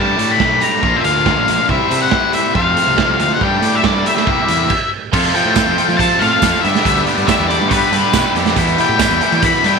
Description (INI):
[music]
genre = indie rock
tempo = 140 BPM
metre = 4/4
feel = straight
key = unclear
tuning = A4 = 440 Hz
[part]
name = octave-fuzz lead guitar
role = melody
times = 0.0-9.8 s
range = B4 to B5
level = -16 LUFS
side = left 4 dB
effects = distortion, slapback echo
[part]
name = combo organ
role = sustained chords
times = 0.0-9.8 s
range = G4 to D6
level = -27 LUFS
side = right 11 dB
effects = none
[part]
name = biting overdriven guitar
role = riff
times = 0.0-9.8 s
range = E2 to A4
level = -18 LUFS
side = left 14 dB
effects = none
[part]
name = overdriven electric guitar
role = riff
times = 0.0-9.8 s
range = E2 to G4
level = -22 LUFS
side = right 14 dB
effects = analog chorus, slapback echo
[part]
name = fuzz picked electric bass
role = bass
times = 0.0-9.7 s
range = Bb1 to F3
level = -21 LUFS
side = equal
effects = overdrive
[part]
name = raw garage drum kit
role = drums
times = 0.2-9.7 s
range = crash cymbal, hi-hat, kick drum, snare drum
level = -18 LUFS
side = right 6 dB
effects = none
[part]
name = tambourine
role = percussion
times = 5.6-9.1 s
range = none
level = -29 LUFS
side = right 16 dB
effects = none
[sound]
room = light reverb, studio reverb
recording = 1960s-style stereo with parts hard left and right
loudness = -12 LUFS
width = side -5 dB against mid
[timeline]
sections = 0.0-5.1 A section; 5.1-9.8 B section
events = stop 4.7-5.1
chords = 0.0 Gsus2; 0.8 Bbadd9; 1.7 C; 2.6 F; 3.4 Gsus2; 4.3 C7; 5.1 F; 6.6 G6; 8.6 Em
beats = 0.40 0.83 1.26 | 1.69 2.12 2.55 2.98 | 3.41 3.84 4.27 4.70 | 5.13 5.56 5.99 6.42 | 6.85 7.28 7.71 8.14 | 8.57 9.00 9.43